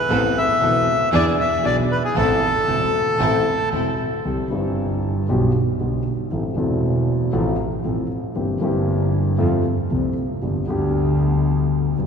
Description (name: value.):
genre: tango.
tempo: 116 BPM.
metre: 4/4.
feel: rubato.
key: A harmonic minor, C major from 4.3 s.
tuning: A4 = 439 Hz.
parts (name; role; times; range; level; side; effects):
bandoneon; melody; 0.0-3.7 s; G#4 to E5; -20 LUFS; left 1 dB; none.
dark concert grand piano; accompaniment; 0.1-12.1 s; E1 to A4; -21 LUFS; left 2 dB; none.
bright studio string section; stabs; 0.1-3.9 s; B3 to A4; -28 LUFS; right 3 dB; none.
rich double bass; bass; 0.1-12.1 s; E1 to F2; -23 LUFS; right 2 dB; none.
room: wet cathedral reverb, RT60 4.2 s.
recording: recorded in a church or concert hall.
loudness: -18 LUFS.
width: side -6 dB against mid.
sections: 0.0-4.3 A section; 4.3-12.1 B section.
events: none.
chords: 0.1 Amadd9; 1.1 E7; 2.2 Am; 4.3 C; 5.3 G/B; 6.3 Am; 7.3 F/A; 8.4 C7/G; 9.4 F; 10.4 G.